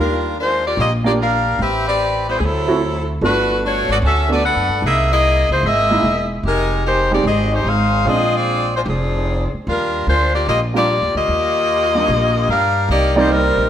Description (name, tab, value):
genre	jazz, big band swing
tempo	149 BPM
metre	4/4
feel	swing 66% on 8ths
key	Eb major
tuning	A4 = 440 Hz
part	clear saxophone section	melody	0.0-13.7 s	F3 to F#5	-16 LUFS	left 1 dB	none
part	clear upright piano	accompaniment	0.0-13.7 s	Eb3 to D5	-21 LUFS	right 3 dB	none
part	upright bass	bass	0.0-13.7 s	E1 to G2	-20 LUFS	equal	none
room	moderate recital hall reverb, RT60 1.6 s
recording	none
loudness	-14 LUFS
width	side -10 dB against mid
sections	0.0-12.9 A section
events	none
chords	0.0 Ebmaj9; 1.6 Am9; 2.4 D9; 3.2 Gmaj9; 4.8 C7alt; 6.4 Fm9; 8.1 Bb9; 9.7 Ebmaj9; 12.9 Cm7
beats	0.38 0.78 1.19 | 1.59 2.00 2.40 2.81 | 3.21 3.62 4.02 4.43 | 4.83 5.24 5.64 6.04 | 6.45 6.85 7.25 7.66 | 8.06 8.47 8.87 9.27 | 9.68 10.08 10.48 10.89 | 11.29 11.69 12.10 12.50 | 12.90 13.31